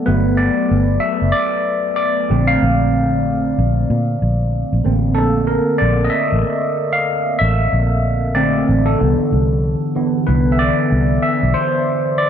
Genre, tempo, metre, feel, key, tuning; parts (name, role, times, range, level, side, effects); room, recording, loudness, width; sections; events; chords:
R&B, neo-soul; 94 BPM; 4/4; swing 59% on 16ths; A4 = 440 Hz
overdriven tine electric piano; accompaniment; 0.0-12.3 s; D3 to F5; -16 LUFS; equal; phaser
vintage muted fingered electric bass; bass; 0.1-11.5 s; F#1 to Bb2; -17 LUFS; equal
light reverb; dark, warm production; -14 LUFS; side -8 dB against mid
0.0-12.3 A section
tine electric piano solo 0.0-12.3
0.0 Gmaj9; 2.3 Bbmaj9; 9.0 Cmaj9